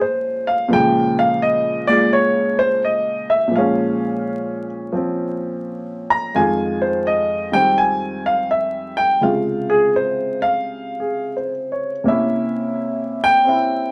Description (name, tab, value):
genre	solo jazz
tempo	85 BPM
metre	4/4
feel	swing 66% on 8ths, rubato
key	unclear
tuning	A4 = 440 Hz
part	warm baby grand piano	solo	0.0-13.9 s	F2 to Bb5	-19 LUFS	equal	none
room	wet small room reverb, RT60 0.5 s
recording	vinyl crackle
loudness	-19 LUFS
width	mono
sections	0.0-13.9 A section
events	grand piano solo 0.0-13.9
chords	0.0 Bbm7; 6.3 Fm7; 9.2 Dbmaj7; 12.1 C7b9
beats	0.00 | 0.71 1.42 2.12 2.83 | 3.53 4.23 4.93 5.64 | 6.34 7.05 7.77 8.49 | 9.21 9.93 10.64 11.35 | 12.06 12.77 13.47